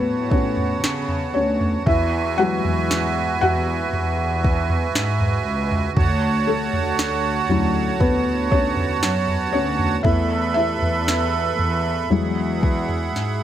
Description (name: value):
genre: pop ballad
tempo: 58 BPM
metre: 4/4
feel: straight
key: unclear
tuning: A4 = 444 Hz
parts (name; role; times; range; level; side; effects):
- felt-muted upright piano; accompaniment; 0.0-13.4 s; F#3 to F#5; -23 LUFS; left 3 dB; none
- accordion; sustained chords; 0.0-13.4 s; F#4 to B5; -24 LUFS; right 6 dB; light tremolo tuning
- rich symphonic cello section; bass; 0.0-13.4 s; C#2 to C#3; -25 LUFS; equal; none
- smooth R&B drum kit; drums; 0.3-13.4 s; kick drum, snare drum, toms; -23 LUFS; equal; overdrive
room: light reverb, small room reverb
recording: none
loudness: -18 LUFS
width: side -11 dB against mid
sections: 0.0-13.4 A section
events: felt piano solo 0.0-13.4; drum fill 13.2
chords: 0.0 A6; 1.9 Eadd9; 6.0 Dmaj7; 10.1 Esus4; 12.1 Eadd9